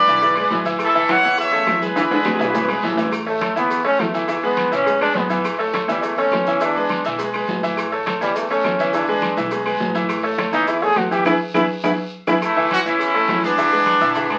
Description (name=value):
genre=latin, salsa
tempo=207 BPM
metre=4/4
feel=straight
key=A major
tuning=A4 = 442 Hz
part: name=bright trumpet section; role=melody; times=0.0-3.0, 12.4-14.4 s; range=A3 to F#5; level=-19 LUFS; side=equal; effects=none
part: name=growling baritone saxophone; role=second line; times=0.0-3.0 s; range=C#3 to E3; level=-29 LUFS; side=equal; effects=none
part: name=bright concert grand piano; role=accompaniment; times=0.0-14.4 s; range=E3 to E5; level=-24 LUFS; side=equal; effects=none
part: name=upright bass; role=bass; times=0.1-14.4 s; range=A1 to E2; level=-34 LUFS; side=equal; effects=none
part: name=congas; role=percussion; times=0.1-14.4 s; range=none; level=-34 LUFS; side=equal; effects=none
part: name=cowbell and bongos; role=percussion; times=0.1-14.3 s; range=none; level=-34 LUFS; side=equal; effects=none
part: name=guiro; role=percussion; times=0.1-14.4 s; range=none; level=-40 LUFS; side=equal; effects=none
part: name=maracas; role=percussion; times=0.1-14.4 s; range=none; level=-45 LUFS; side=equal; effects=none
part: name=agogo bells and timbales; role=percussion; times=0.2-14.4 s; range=none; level=-30 LUFS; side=equal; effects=none
part: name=claves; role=percussion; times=0.4-14.4 s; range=none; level=-35 LUFS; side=equal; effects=none
part: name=bright trombone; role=melody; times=3.3-12.4 s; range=G3 to G#4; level=-22 LUFS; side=equal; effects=none
room=wet studio ambience, RT60 0.5 s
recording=very old 78 rpm record, vinyl crackle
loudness=-19 LUFS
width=mono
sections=0.0-3.1 A section; 3.1-12.4 B section; 12.4-14.4 A section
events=drum fill 2.0-3.1, 11.3-12.4; trombone solo 3.1-12.4; band accent 11.3-12.4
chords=0.0 E7; 0.8 A; 2.0 E7; 3.1 A; 4.3 E; 5.4 A; 6.6 E7; 7.8 A; 8.9 E7; 10.1 A; 11.3 E; 12.4 A; 13.6 E7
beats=0.22 0.51 | 0.80 1.09 1.38 1.67 | 1.96 2.25 2.54 2.83 | 3.12 3.41 3.70 3.99 | 4.29 4.58 4.87 5.16 | 5.45 5.74 6.03 6.32 | 6.61 6.90 7.19 7.48 | 7.77 8.06 8.35 8.64 | 8.94 9.22 9.52 9.81 | 10.10 10.39 10.68 10.97 | 11.26 11.55 11.84 12.13 | 12.42 12.71 13.00 13.29 | 13.58 13.87 14.16